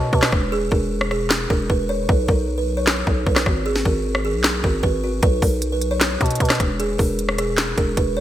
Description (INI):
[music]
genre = hip hop, trap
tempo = 153 BPM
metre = 4/4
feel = half-time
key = unclear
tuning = A4 = 440 Hz
[part]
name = buzzing kalimba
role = melody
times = 0.0-8.2 s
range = F#4 to C#5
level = -24 LUFS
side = right 3 dB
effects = none
[part]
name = growling 808-style bass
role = bass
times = 0.0-8.2 s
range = E1 to B2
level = -23 LUFS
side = equal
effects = none
[part]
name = trap drum kit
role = drums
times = 0.1-8.1 s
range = handclaps, hi-hat, kick drum, rim click, snare drum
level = -19 LUFS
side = equal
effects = gated reverb
[sound]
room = light reverb, digital ambience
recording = bright 1980s-style digital production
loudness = -17 LUFS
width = side -12 dB against mid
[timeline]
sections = 0.0-8.2 A section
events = break 0.0-5.2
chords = 0.0 C#m7 (rootless); 0.5 E; 2.1 G#m; 5.2 C#m7; 6.8 E